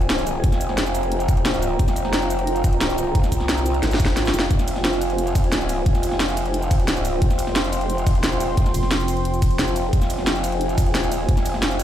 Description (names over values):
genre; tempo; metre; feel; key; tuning
dark technical drum and bass; 177 BPM; 4/4; straight; F minor; A4 = 441 Hz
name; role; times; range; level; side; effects
dark analog pad; sustained chords; 0.0-11.8 s; F4 to C6; -27 LUFS; left 1 dB; chorus, sidechain pumping
growl bass; bass; 0.0-11.8 s; F1 to C2; -24 LUFS; equal; chorus, tube saturation, sidechain pumping
drum and bass drum kit; drums; 0.0-11.8 s; cabasa, hi-hat, ride cymbal, snare drum; -25 LUFS; equal; overdrive
deep dark ambient pad; texture; 0.0-11.8 s; F4 to Bb5; -28 LUFS; right 2 dB; chorus, built-in reverb, sidechain pumping
electronic kick drum; drums; 0.4-11.4 s; none; -19 LUFS; equal; overdrive
growling FM bass; bass; 8.7-9.6 s; F1; -23 LUFS; equal; none
room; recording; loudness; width
light reverb, digital ambience; played on a big sound system in a bare room, large studio reverb; -18 LUFS; side -11 dB against mid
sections
0.0-11.8 A section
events
drum fill 3.8-4.5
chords
0.0 Fm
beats
0.10 | 0.44 0.78 1.12 1.46 | 1.79 2.13 2.47 2.81 | 3.15 3.49 3.83 4.17 | 4.51 4.84 5.18 5.52 | 5.86 6.20 6.54 6.88 | 7.22 7.56 7.90 8.23 | 8.57 8.91 9.25 9.59 | 9.93 10.27 10.61 10.95 | 11.29 11.62